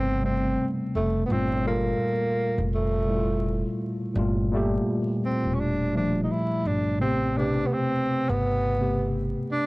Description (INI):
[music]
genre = hip hop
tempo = 84 BPM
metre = 4/4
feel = swing 59% on 16ths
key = unclear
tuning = A4 = 441 Hz
[part]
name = breathy tenor saxophone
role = melody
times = 0.0-9.7 s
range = A3 to E4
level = -27 LUFS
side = right 1 dB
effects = low-pass filter
[part]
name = mellow tine electric piano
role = accompaniment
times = 0.0-9.7 s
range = Bb2 to B4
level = -26 LUFS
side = equal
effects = medium stereo tremolo, cassette tape, low-pass filter
[part]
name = upright bass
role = bass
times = 0.0-9.3 s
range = E1 to A1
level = -28 LUFS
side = equal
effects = transformer saturation
[sound]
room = light reverb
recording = dry, gritty hardware recording, vinyl crackle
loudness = -23 LUFS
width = side -22 dB against mid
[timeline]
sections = 0.0-9.7 A section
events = none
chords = 0.0 Am9; 1.3 Gm9; 7.0 Am9